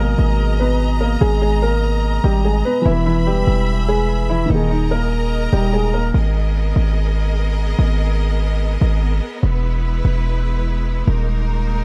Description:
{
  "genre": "hip hop",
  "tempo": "146 BPM",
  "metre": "4/4",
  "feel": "half-time",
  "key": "G# harmonic minor",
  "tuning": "A4 = 443 Hz",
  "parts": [
    { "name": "dark baby grand piano", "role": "melody", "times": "0.0-6.1 s", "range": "D#3 to B4", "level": "-23 LUFS", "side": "equal", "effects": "dub echo" },
    { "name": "felt-muted upright piano", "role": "accompaniment", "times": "0.0-6.2 s", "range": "B2 to B4", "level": "-28 LUFS", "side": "equal", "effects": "none" },
    { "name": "rich symphonic string section", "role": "sustained chords", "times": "0.0-11.8 s", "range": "G#3 to B5", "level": "-29 LUFS", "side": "equal", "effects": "none" },
    { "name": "hard-hitting 808-style bass", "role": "bass", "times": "0.0-11.8 s", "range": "D#1 to G#1", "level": "-20 LUFS", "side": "equal", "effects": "none" }
  ],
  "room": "small room ambience",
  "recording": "echo-heavy mix",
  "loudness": "-18 LUFS",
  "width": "mono",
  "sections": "0.0-6.1 A section; 6.1-11.8 B section",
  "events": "none",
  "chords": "0.0 G#madd9; 2.9 E; 4.5 D#sus4; 6.1 G#madd9; 9.4 E; 11.1 D#sus4"
}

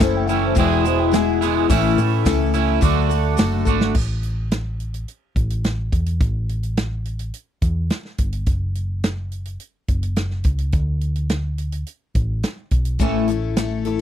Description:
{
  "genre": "folk rock and heartland rock",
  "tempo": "106 BPM",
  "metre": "4/4",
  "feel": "straight",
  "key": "A major, A mixolydian from 3.9 s",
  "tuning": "A4 = 440 Hz",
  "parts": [
    { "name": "dark upright piano", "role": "second line", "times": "0.0-1.4 s", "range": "C5 to G#5", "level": "-26 LUFS", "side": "left 10 dB", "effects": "none" },
    { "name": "picked twelve-string acoustic guitar", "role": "accompaniment", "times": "0.0-4.0, 13.0-14.0 s", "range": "A2 to A4", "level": "-21 LUFS", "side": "left 11 dB", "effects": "none" },
    { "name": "twangy electric guitar", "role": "riff", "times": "0.0-3.9, 13.0-14.0 s", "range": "E2 to F#4", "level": "-22 LUFS", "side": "right 21 dB", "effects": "lush chorus" },
    { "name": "hollow-body short-scale picked electric bass", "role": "bass", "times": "0.0-14.0 s", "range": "E1 to A2", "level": "-22 LUFS", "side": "equal", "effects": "none" },
    { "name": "natural country drum kit", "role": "drums", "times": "0.0-14.0 s", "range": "crash cymbal, hi-hat, kick drum, snare drum", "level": "-21 LUFS", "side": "equal", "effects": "none" },
    { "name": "tube shaker", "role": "percussion", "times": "0.0-3.8, 13.0-13.7 s", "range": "none", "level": "-37 LUFS", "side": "left 23 dB", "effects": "none" }
  ],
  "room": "little or no reverb",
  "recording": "dry, close 1970s-style studio recording",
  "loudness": "-18 LUFS",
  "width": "side -10 dB against mid",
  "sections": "0.0-3.9 A section; 3.9-14.0 B section",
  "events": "drum fill 3.7",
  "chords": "0.0 A; 0.6 E; 1.7 A; 2.8 D; 3.9 A5; 8.5 F#5; 10.7 D5; 13.0 A"
}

